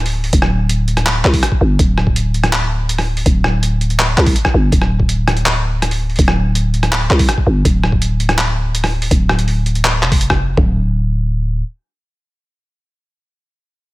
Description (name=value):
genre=half-time drum and bass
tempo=164 BPM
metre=4/4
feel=half-time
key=D minor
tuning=A4 = 440 Hz
part: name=growling 808-style bass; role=bass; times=0.0-11.6 s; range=D1 to C2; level=-15 LUFS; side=equal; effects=none
part: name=boom bap sampler-style drum kit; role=drums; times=0.1-10.4 s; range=handclaps, hi-hat, rim click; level=-18 LUFS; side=equal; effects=small room ambience
part: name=boom bap sampler-style drum kit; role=drums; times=0.3-10.7 s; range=kick drum, toms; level=-15 LUFS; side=equal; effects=small room ambience
room=digital ambience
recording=none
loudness=-13 LUFS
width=side -19 dB against mid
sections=0.0-10.6 A section; 10.6-13.5 B section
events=drop 0.0-10.6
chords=none